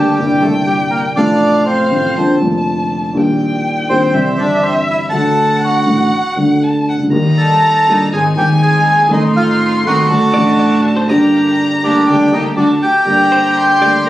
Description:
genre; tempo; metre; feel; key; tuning
tango; 121 BPM; 4/4; rubato; G minor; A4 = 440 Hz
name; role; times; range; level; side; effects
bandoneon; melody; 0.0-14.1 s; G3 to A5; -13 LUFS; equal; none
dark violin; second line; 0.0-14.1 s; E5 to C6; -20 LUFS; left 1 dB; none
dark upright piano; accompaniment; 0.0-14.0 s; Eb1 to A4; -14 LUFS; equal; none
warm chamber string section; stabs; 7.1-14.0 s; D3 to G4; -21 LUFS; right 1 dB; none
hollow-body jazz guitar; second line; 10.3-14.1 s; C5 to Eb5; -23 LUFS; left 2 dB; none
room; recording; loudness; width
moderate studio reverb, RT60 0.6 s; recorded on a phone in the room, studio ambience, compression; -10 LUFS; side -14 dB against mid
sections
0.0-14.1 A section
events
none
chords
0.2 C7/G; 1.2 F/A; 2.2 Bb; 3.1 Eb/Bb; 4.1 C; 5.1 D; 7.1 Eb; 8.1 Ab; 9.1 Adim; 10.1 D; 11.1 Gm; 12.1 Gm/D; 12.6 D; 13.1 Gm

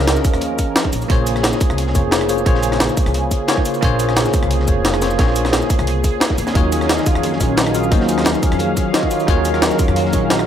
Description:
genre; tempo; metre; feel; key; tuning
liquid drum and bass; 176 BPM; 4/4; straight; unclear; A4 = 440 Hz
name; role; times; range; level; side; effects
bell-like tine electric piano; accompaniment; 0.0-10.5 s; Eb3 to Bb5; -20 LUFS; equal; medium stereo tremolo, tape echo
lush unison pad; sustained chords; 0.0-10.5 s; Db3 to F5; -23 LUFS; equal; chorus, phaser, sidechain pumping
upright bass; bass; 0.0-10.5 s; F1 to F2; -21 LUFS; equal; none
crunchy breakbeat drum kit; drums; 0.1-10.4 s; hi-hat, snare drum; -28 LUFS; equal; none
jungle sampler-style drum kit; drums; 0.1-10.5 s; hi-hat, rim click, shaker, snare drum; -21 LUFS; equal; none
electronic kick drum; drums; 0.2-10.2 s; none; -17 LUFS; equal; overdrive
electric guitar at the edge of break-up; arpeggios; 6.6-10.5 s; Bb3 to F4; -25 LUFS; left 3 dB; harmonic tremolo, tape echo
room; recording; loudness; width
light reverb; none; -14 LUFS; side -9 dB against mid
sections
0.0-10.5 A section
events
none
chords
0.0 Db6; 0.9 Bbm9; 6.4 Ebm11

